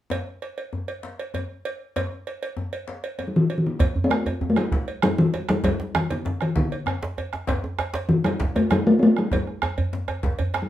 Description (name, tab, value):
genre	west african traditional, West African drum ensemble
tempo	130 BPM (dotted quarters)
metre	12/8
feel	straight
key	unclear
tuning	A4 = 439 Hz
part	cowbell	percussion	0.1-10.7 s	none	-32 LUFS	right 4 dB	none
part	djembe	percussion	0.1-10.7 s	none	-31 LUFS	left 2 dB	none
part	talking drum	melody	3.3-10.7 s	D3 to C4	-20 LUFS	left 1 dB	none
part	bombo	percussion	3.8-10.7 s	none	-26 LUFS	right 2 dB	none
part	djembe	percussion	3.8-10.7 s	none	-29 LUFS	right 2 dB	none
room	wet studio reverb, RT60 0.6 s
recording	band playing live in one room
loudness	-21 LUFS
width	side -13 dB against mid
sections	0.1-3.8 A section; 3.8-10.7 B section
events	drum fill 10.4-10.7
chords	none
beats	| 0.11 0.57 1.04 1.50 | 1.96 2.42 2.88 3.34 | 3.80 4.26 4.72 5.18 | 5.64 6.10 6.56 7.02 | 7.48 7.94 8.40 8.86 | 9.32 9.78 10.23 10.69